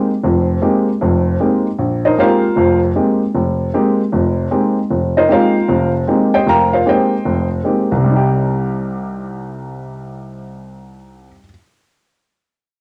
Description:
jazz; 154 BPM; 4/4; swing 64% on 8ths; A4 = 441 Hz
warm baby grand piano; solo; 0.0-11.5 s; F1 to Bb5; -16 LUFS; equal; cassette tape
wet small room ambience, RT60 0.5 s; home recording on cassette; -15 LUFS; mono
0.0-1.8 A section; 1.8-8.0 B section; 8.0-11.2 C section
0.0 Bb13sus4; 8.0 Cm
| 0.22 0.61 1.00 1.39 | 1.78 2.17 2.56 2.95 | 3.34 3.73 4.12 4.51 | 4.91 5.30 5.69 6.08 | 6.47 6.86 7.25 7.64 | 8.03 8.42 8.81 9.20 | 9.59 9.98 10.37 10.76

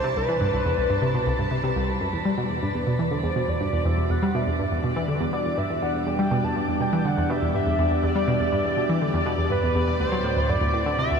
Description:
ambient, sequencer-driven space music; 122 BPM; 4/4; straight; E minor; A4 = 441 Hz
pulse-width lead; melody; 0.0-11.2 s; B4 to A5; -27 LUFS; equal; chorus, analog delay
phased analog pad; sustained chords; 0.0-11.2 s; C2 to G4; -29 LUFS; equal; phaser, chorus
analog pluck; riff; 0.0-11.2 s; C2 to G3; -24 LUFS; equal; chorus, analog delay
bubbling stepped-filter texture; texture; 0.0-11.2 s; D5 to A5; -31 LUFS; equal; chorus, built-in reverb
wet shimmer reverb, RT60 8.2 s; cassette tape; -21 LUFS; side -6 dB against mid
0.0-11.2 A section
fade-in on analog synth pad 0.0-11.2
0.0 Cmaj7; 2.1 Em7; 10.0 D7
| 0.17 0.66 1.15 1.64 | 2.13 2.63 3.12 3.61 | 4.10 4.59 5.09 5.58 | 6.07 6.56 7.05 7.54 | 8.04 8.53 9.02 9.51 | 10.00 10.49 10.99

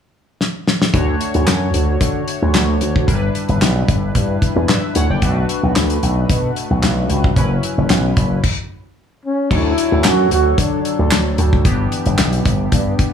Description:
early-eighties boogie funk; 112 BPM; 4/4; straight; D major; A4 = 441 Hz
damped 70s drum kit; drums; 0.4-13.1 s; crash cymbal, handclaps, hi-hat, kick drum, snare drum; -17 LUFS; left 1 dB
chorused polysynth; accompaniment; 0.9-13.1 s; E3 to G5; -22 LUFS; left 2 dB
slap bass with an envelope filter; bass; 0.9-12.9 s; F#1 to D3; -17 LUFS; equal
warm trombone; melody; 9.3-11.4 s; C#4 to F#4; -18 LUFS; right 1 dB; tape echo
group handclap; percussion; 10.0-12.3 s; -25 LUFS; right 4 dB
light reverb, studio reverb; small room reverb; -14 LUFS; side -8 dB against mid
0.9-9.5 A section; 9.5-13.1 B section
drum fill 0.4-0.9; stop 8.4-9.5
0.0 N.C.; 0.9 Dmaj7; 3.1 G6; 5.2 Bm7; 7.4 F#7sus4; 9.5 Dmaj7; 11.7 G6
0.40 | 0.94 1.47 2.01 2.54 | 3.08 3.62 4.15 4.69 | 5.22 5.76 6.29 6.83 | 7.37 7.90 8.44 8.97 | 9.51 10.04 10.58 11.12 | 11.65 12.19 12.72

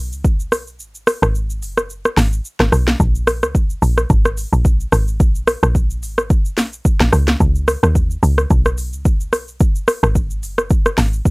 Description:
amapiano; 109 BPM; 4/4; swing 55% on 16ths; Bb phrygian; A4 = 441 Hz
woody log drum bass; bass; 0.0-11.2 s; Gb1 to D#2; -17 LUFS; equal
afro-pop drum kit; drums; 0.1-11.3 s; hi-hat, kick drum, rim click, shaker, snare drum; -16 LUFS; equal
little or no reverb; -14 LUFS; side -29 dB against mid
0.0-11.3 A section
kick muted 0.8-3.0
0.24 | 0.80 1.35 1.90 2.45 | 3.00 3.55 4.10 4.65 | 5.20 5.75 6.30 6.85 | 7.40 7.95 8.50 9.05 | 9.60 10.15 10.70 11.25

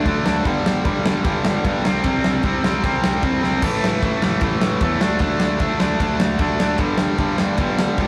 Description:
punk rock; 152 BPM; 4/4; straight; A4 = 442 Hz
tight distorted guitar; riff; 0.0-8.1 s; G2 to D4; -22 LUFS; equal; distortion
fuzz picked electric bass; bass; 0.1-8.1 s; G1 to E2; -30 LUFS; equal; overdrive
big rock drum kit; drums; 0.1-8.1 s; crash cymbal, kick drum, ride cymbal, snare drum; -23 LUFS; equal
light reverb; rough rehearsal-room recording, warm saturation; -19 LUFS; mono
0.0-8.1 A section
drum fill 3.4
0.5 G5; 1.8 C5; 3.6 A5; 5.0 D5; 6.8 G5
0.06 | 0.46 0.85 1.25 1.64 | 2.04 2.44 2.83 3.23 | 3.62 4.02 4.42 4.81 | 5.21 5.60 6.00 6.39 | 6.79 7.19 7.58 7.98

